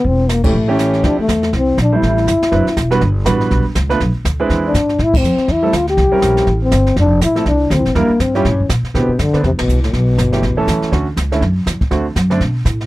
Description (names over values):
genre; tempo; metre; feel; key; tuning
jazz, small-group swing and bop; 243 BPM; 4/4; swing 59% on 8ths; D minor; A4 = 440 Hz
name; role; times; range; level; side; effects
breathy trombone; melody; 0.0-10.7 s; A2 to G4; -15 LUFS; left 2 dB; none
upright bass; bass; 0.0-12.9 s; E1 to B2; -16 LUFS; equal; none
jazz brush drum kit; drums; 0.0-12.9 s; brushed snare drum, crash cymbal, hi-hat, kick drum, ride cymbal, snare drum; -22 LUFS; right 1 dB; none
warm grand piano; accompaniment; 0.4-12.4 s; D3 to C5; -18 LUFS; right 3 dB; none
room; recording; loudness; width
little or no reverb; dry, close 1970s-style studio recording; -12 LUFS; side -17 dB against mid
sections
0.0-1.0 A section; 1.0-8.9 B section; 8.9-12.9 A section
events
band accent 0.4, 5.1, 9.6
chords
0.0 C13b9/E; 0.5 A7; 1.0 Dm11; 2.0 Am7; 2.5 D13; 3.0 Gmaj7; 4.0 Bmadd11; 4.5 E7b13; 5.0 Am; 6.0 C7b9; 7.0 Fmaj7; 8.0 Em7b5; 8.4 A7 (rootless); 8.9 Am11; 9.9 Em; 10.4 A; 10.9 Dmaj7; 11.9 D7